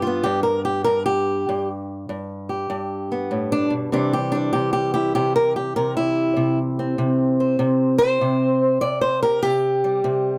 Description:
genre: acoustic country blues, solo or duo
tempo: 98 BPM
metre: 4/4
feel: swing 67% on 8ths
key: unclear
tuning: A4 = 439 Hz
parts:
  - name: fingerpicked old ladder-braced acoustic guitar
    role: solo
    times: 0.0-10.4 s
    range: G2 to D5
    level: -21 LUFS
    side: equal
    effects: none
room: little or no reverb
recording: close, detailed microphones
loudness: -21 LUFS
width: mono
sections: 0.0-10.4 A section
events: steel-string acoustic guitar solo 0.0-10.4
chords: 0.0 G; 3.9 C

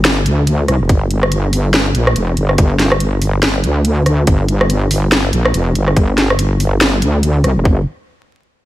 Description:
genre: deep dubstep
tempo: 142 BPM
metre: 4/4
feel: swing 58% on 16ths, half-time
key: G minor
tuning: A4 = 440 Hz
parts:
  - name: wobble bass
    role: bass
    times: 0.0-7.8 s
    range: F1 to D2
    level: -14 LUFS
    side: equal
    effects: chorus, tube saturation
  - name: garage drum kit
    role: drums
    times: 0.0-7.5 s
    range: hi-hat, rim click, snare drum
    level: -16 LUFS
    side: equal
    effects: overdrive, studio reverb
  - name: electronic kick drum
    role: drums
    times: 0.9-7.8 s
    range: none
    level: -12 LUFS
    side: equal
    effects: overdrive, studio reverb
room: little or no reverb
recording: vinyl crackle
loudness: -12 LUFS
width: side -15 dB against mid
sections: 0.0-7.7 A section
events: drop 0.0-7.7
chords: none

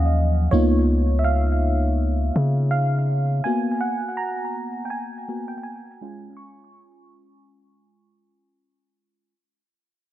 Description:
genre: contemporary R&B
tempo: 82 BPM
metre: 4/4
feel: swing 58% on 16ths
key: unclear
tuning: A4 = 439 Hz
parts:
  - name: mellow FM electric piano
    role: accompaniment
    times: 0.0-9.3 s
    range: F3 to Db6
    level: -24 LUFS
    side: right 1 dB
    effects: chorus, low-pass filter, analog delay
  - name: long sustained 808-style bass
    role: bass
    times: 0.0-3.4 s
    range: Db2 to Db3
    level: -19 LUFS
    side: equal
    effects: none
room: light reverb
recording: echo-heavy mix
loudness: -19 LUFS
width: side -14 dB against mid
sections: 0.0-9.3 A section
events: fade-out 0.0-9.3; FM electric piano solo 0.0-9.3; filter sweep on FM electric piano 0.0-9.3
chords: 0.0 Ebm9; 0.5 Db13; 3.4 Abm9/Bb; 6.0 Absus4

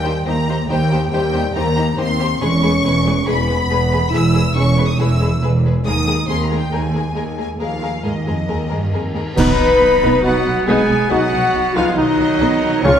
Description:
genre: cinematic, heroic adventure film score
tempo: 139 BPM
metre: 4/4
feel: straight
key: unclear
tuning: A4 = 442 Hz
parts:
  - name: warm symphonic violin section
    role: melody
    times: 0.0-13.0 s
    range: Eb5 to E6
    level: -24 LUFS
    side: left 2 dB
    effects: none
  - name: warm symphonic violin section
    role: second line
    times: 0.0-13.0 s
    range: G4 to Db6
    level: -26 LUFS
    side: left 4 dB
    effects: none
  - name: warm studio viola section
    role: accompaniment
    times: 0.0-13.0 s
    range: G#3 to G#4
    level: -24 LUFS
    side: equal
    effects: none
  - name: mellow French horn section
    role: sustained chords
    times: 0.0-13.0 s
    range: Eb3 to Db5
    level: -21 LUFS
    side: left 2 dB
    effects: none
  - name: warm studio double bass section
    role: bass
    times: 0.0-12.9 s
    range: E1 to Eb2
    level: -20 LUFS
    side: right 1 dB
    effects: none
  - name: warm symphonic cello section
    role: bass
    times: 0.0-13.0 s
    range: Eb2 to Db4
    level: -23 LUFS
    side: right 2 dB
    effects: none
  - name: cymbal swell, clash cymbals and concert bass drum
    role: percussion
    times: 5.9-10.2 s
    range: none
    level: -24 LUFS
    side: equal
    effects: none
  - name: warm clarinet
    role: second line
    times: 9.4-13.0 s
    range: Eb4 to Db5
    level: -22 LUFS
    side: equal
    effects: none
  - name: warm cor anglais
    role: second line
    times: 9.4-13.0 s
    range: Eb4 to Db5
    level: -25 LUFS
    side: right 1 dB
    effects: none
  - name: clear trombone section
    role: sustained chords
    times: 9.4-13.0 s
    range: F3 to Eb4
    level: -25 LUFS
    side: right 1 dB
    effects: none
  - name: clear trumpet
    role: stabs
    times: 9.4-13.0 s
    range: Gb3 to F4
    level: -22 LUFS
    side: right 1 dB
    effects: none
  - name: timpani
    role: percussion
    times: 12.9-13.0 s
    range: Db3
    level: -18 LUFS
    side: left 1 dB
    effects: none
room: wet recital hall reverb, RT60 1.6 s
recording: recorded in a church or concert hall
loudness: -14 LUFS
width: side -9 dB against mid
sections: 0.0-9.4 A section; 9.4-13.0 B section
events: band accent 9.4-9.8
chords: 0.0 Eb6; 2.4 E; 5.9 Ebsus4; 9.4 Cb

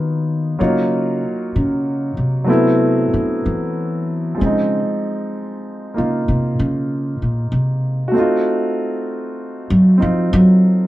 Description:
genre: jazz ballad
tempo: 64 BPM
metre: 4/4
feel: swing 67% on 8ths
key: unclear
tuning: A4 = 440 Hz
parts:
  - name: clear baby grand piano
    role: accompaniment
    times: 0.0-10.9 s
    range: F3 to Db5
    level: -19 LUFS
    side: equal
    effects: none
  - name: upright bass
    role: bass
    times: 0.0-10.9 s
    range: Bb2 to Gb3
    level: -17 LUFS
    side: equal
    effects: none
room: moderate studio reverb, RT60 0.5 s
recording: band playing live in one room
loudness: -15 LUFS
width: side -16 dB against mid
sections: 0.0-10.9 A section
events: upright bass solo 0.0-10.9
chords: 0.0 Bmaj9#11; 0.6 Ebm7; 2.5 D13; 4.4 Dbmaj9; 8.1 F7b9

